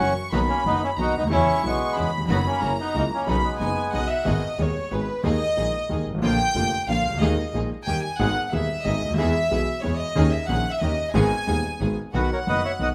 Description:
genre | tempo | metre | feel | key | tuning
tango | 183 BPM | 3/4 | rubato | B major, G# minor from 4.3 s | A4 = 440 Hz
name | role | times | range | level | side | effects
bandoneon | melody | 0.0-4.1, 12.2-12.9 s | F#3 to F#5 | -27 LUFS | equal | none
warm studio violin section | second line | 0.0-12.9 s | B4 to C#6 | -29 LUFS | equal | none
warm concert grand piano | accompaniment | 0.0-12.9 s | D#1 to G#4 | -29 LUFS | equal | none
clear symphonic string section | stabs | 0.0-12.9 s | F#3 to G#4 | -36 LUFS | equal | none
clear double bass | bass | 0.0-12.9 s | E#1 to E2 | -30 LUFS | equal | none
room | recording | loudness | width
moderate large studio reverb, RT60 1.3 s | none | -23 LUFS | mono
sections
0.0-4.3 A section; 4.3-12.1 B section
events
violin section solo 4.3-12.1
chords
0.3 Bmaj7; 1.3 E6; 2.3 B/F#; 2.6 F#7; 3.3 Badd9; 4.3 G#m; 5.2 D#sus4; 6.2 A#; 7.2 D#sus4; 7.9 D#; 8.2 G#m; 9.2 E; 10.2 D#7sus4; 10.8 D#7; 11.1 G#m; 12.1 B

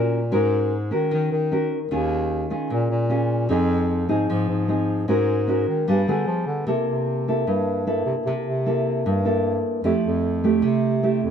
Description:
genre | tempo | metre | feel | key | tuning
bossa nova | 151 BPM | 4/4 | straight | unclear | A4 = 440 Hz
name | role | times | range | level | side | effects
nylon-string guitar | accompaniment | 0.0-11.3 s | G2 to Bb4 | -22 LUFS | equal | none
mellow bass clarinet | bass | 0.0-11.3 s | Eb2 to F3 | -24 LUFS | equal | none
room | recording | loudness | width
light reverb | close, detailed microphones | -20 LUFS | side -8 dB against mid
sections
0.0-6.7 A section; 6.7-11.3 B section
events
none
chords
0.3 Ab9sus4; 1.9 Eb9sus4; 3.5 Fm7; 5.1 Ab9sus4; 5.9 G7b9; 6.7 C6; 9.8 Fmaj9

